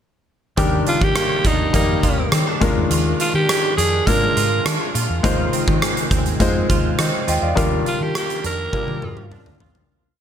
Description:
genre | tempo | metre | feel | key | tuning
1980s-style pop | 103 BPM | 4/4 | straight | Eb major | A4 = 439 Hz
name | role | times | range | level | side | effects
bright concert grand piano | accompaniment | 0.6-9.9 s | Eb3 to G5 | -23 LUFS | left 3 dB | none
direct-recorded clean electric guitar | riff | 0.6-10.2 s | Eb3 to G4 | -28 LUFS | right 5 dB | ensemble chorus
vintage muted fingered electric bass | bass | 0.6-9.8 s | D2 to Eb3 | -23 LUFS | equal | none
huge arena drum kit | drums | 0.6-9.9 s | hi-hat, kick drum, rim click, toms | -21 LUFS | equal | none
raspy alto saxophone | melody | 0.9-9.3 s | Eb4 to Bb4 | -22 LUFS | right 1 dB | ping-pong delay
room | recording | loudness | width
light reverb, studio reverb | none | -16 LUFS | side -9 dB against mid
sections
0.6-9.9 verse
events
fade-out 7.6-9.9; drum fill 8.7-9.9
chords
0.6 Ebmaj7; 2.6 Bb7/Eb; 5.2 Fm7/Eb; 7.6 Gm7/Eb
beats
| 0.58 1.16 1.74 2.33 | 2.91 3.49 4.07 4.66 | 5.24 5.82 6.40 6.99 | 7.57 8.15 8.73 9.32

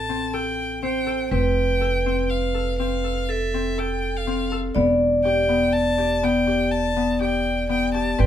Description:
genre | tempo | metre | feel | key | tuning
contemporary instrumental, chamber music in an uneven meter | 122 BPM | 7/4 | straight | unclear | A4 = 441 Hz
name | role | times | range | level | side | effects
warm violin | melody | 0.0-8.3 s | E5 to A5 | -27 LUFS | left 2 dB | none
vibraphone with hard mallets | second line | 0.0-8.3 s | A4 to D5 | -24 LUFS | right 1 dB | none
concert harp | arpeggios | 0.0-8.3 s | B3 to A4 | -25 LUFS | left 5 dB | none
upright bass | bass | 0.0-8.3 s | E1 to A1 | -27 LUFS | right 1 dB | none
room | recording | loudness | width
light reverb | none | -20 LUFS | side -10 dB against mid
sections
0.0-8.3 A section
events
none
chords
0.0 Am; 1.3 F; 4.8 Em7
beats
0.33 0.82 | 1.31 1.81 2.30 2.79 3.28 3.77 4.26 | 4.76 5.25 5.74 6.23 6.72 7.21 7.70 | 8.19

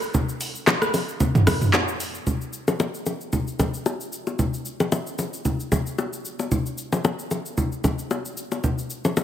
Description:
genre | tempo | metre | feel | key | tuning
amapiano | 113 BPM | 4/4 | swing 55% on 16ths | none | none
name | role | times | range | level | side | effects
deep house drum kit | drums | 0.0-9.2 s | handclaps, hi-hat, rim click, shaker, toms | -25 LUFS | right 1 dB | overdrive
congas and bongos | percussion | 0.1-9.2 s | none | -24 LUFS | left 1 dB | none
room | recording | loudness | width
light reverb, digital ambience | heavily compressed radio sound, multiband compression | -22 LUFS | side -10 dB against mid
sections
0.0-2.3 A section; 2.3-9.2 B section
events
drop 0.0-2.3; kick muted 0.1-2.3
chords
none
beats
| 0.14 0.67 1.20 1.74 | 2.27 2.80 3.33 3.86 | 4.39 4.92 5.45 5.98 | 6.51 7.04 7.58 8.11 | 8.64 9.17

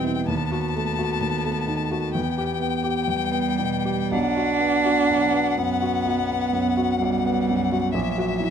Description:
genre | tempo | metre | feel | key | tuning
classical, slow romantic movement for piano trio | 64 BPM | 4/4 | rubato | unclear | A4 = 437 Hz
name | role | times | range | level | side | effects
warm violin | melody | 0.0-8.5 s | E5 to A5 | -27 LUFS | left 9 dB | none
rich cello | second line | 0.0-8.5 s | F#3 to D4 | -25 LUFS | right 5 dB | none
warm baby grand piano | accompaniment | 0.0-8.5 s | A#1 to G4 | -24 LUFS | right 1 dB | none
room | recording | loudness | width
little or no reverb | close, detailed microphones | -21 LUFS | side -8 dB against mid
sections
0.0-8.5 A section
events
none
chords
0.3 B7/D#; 2.2 Em; 4.1 Bm; 7.9 F#7/A#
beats
| 0.30 1.24 2.16 3.10 | 4.14 5.13 6.07 7.01 | 7.94

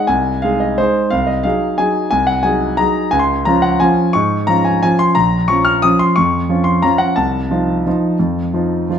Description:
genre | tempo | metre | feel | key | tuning
classical, piano waltz | 178 BPM | 3/4 | uneven beats, rubato | Db major, Bb minor from 5.2 s | A4 = 440 Hz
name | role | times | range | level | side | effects
warm concert grand piano | solo | 0.0-9.0 s | Bb1 to F6 | -13 LUFS | equal | none
room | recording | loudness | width
moderate large studio reverb, RT60 1.2 s | none | -13 LUFS | side -8 dB against mid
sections
0.0-9.0 A section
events
none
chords
0.0 Ab/C; 1.1 Ab7/C; 3.1 Db; 5.2 Bbm; 7.2 F7/C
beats
| 0.09 0.43 0.78 | 1.12 1.45 1.79 | 2.12 2.45 2.79 | 3.13 3.46 3.81 | 4.15 4.49 4.83 | 5.16 5.49 5.84 | 6.17 6.49 6.84 | 7.17 7.51 7.86 | 8.20 8.54 8.90

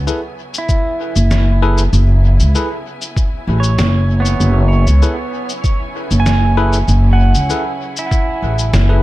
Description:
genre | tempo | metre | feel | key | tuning
ambient dub | 97 BPM | 4/4 | straight | F# minor | A4 = 440 Hz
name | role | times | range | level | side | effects
rich symphonic string section | sustained chords | 0.0-9.0 s | C#3 to G#5 | -31 LUFS | left 1 dB | none
upright bass | bass | 0.0-9.0 s | F#1 to C#2 | -11 LUFS | equal | none
bell-like tine electric piano | stabs | 0.1-9.0 s | E4 to B4 | -24 LUFS | left 3 dB | auto-pan, dub echo
electronic shaker and snare drum | drums | 0.1-8.9 s | none | -23 LUFS | left 2 dB | dub echo
pedal steel guitar | arpeggios | 0.6-9.0 s | B3 to G#5 | -22 LUFS | right 3 dB | dub echo
electronic kick drum | drums | 0.7-8.2 s | none | -15 LUFS | equal | none
room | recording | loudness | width
digital ambience | echo-heavy mix | -12 LUFS | side -17 dB against mid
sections
0.0-9.0 A section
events
fade-in on string section 0.0-9.0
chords
0.0 F#m11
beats
0.07 0.69 1.31 | 1.93 2.55 3.17 3.79 | 4.40 5.02 5.64 6.26 | 6.88 7.50 8.12 8.73

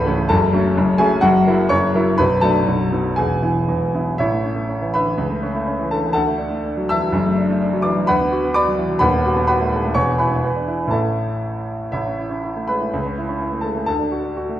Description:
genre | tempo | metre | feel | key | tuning
classical, virtuoso piano study | 115-130 BPM | 2/4 | rubato | A major | A4 = 444 Hz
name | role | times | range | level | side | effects
warm grand piano | solo | 0.0-14.6 s | B0 to E6 | -16 LUFS | equal | none
room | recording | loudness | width
wet recital hall reverb, RT60 1.3 s | minimal, uncompressed stereo recording | -16 LUFS | side -12 dB against mid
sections
0.0-4.2 A section; 4.2-11.9 B section; 11.9-14.6 C section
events
none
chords
0.3 F#m; 1.2 F#7; 2.2 Bm7; 2.7 B7; 3.2 E; 4.2 A; 5.2 A/C#; 6.2 D; 7.1 D/F#; 8.1 Bm/D; 9.0 B7/D#; 9.9 E; 10.4 E7; 10.9 A; 12.9 A/C#; 13.9 D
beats
| 0.31 0.78 | 1.24 1.72 | 2.20 2.69 | 3.19 3.71 | 4.21 4.71 | 5.21 5.68 | 6.16 6.64 | 7.14 7.60 | 8.07 8.54 | 9.01 9.47 | 9.94 10.43 | 10.93 11.44 | 11.94 12.44 | 12.94 13.41 | 13.88 14.37

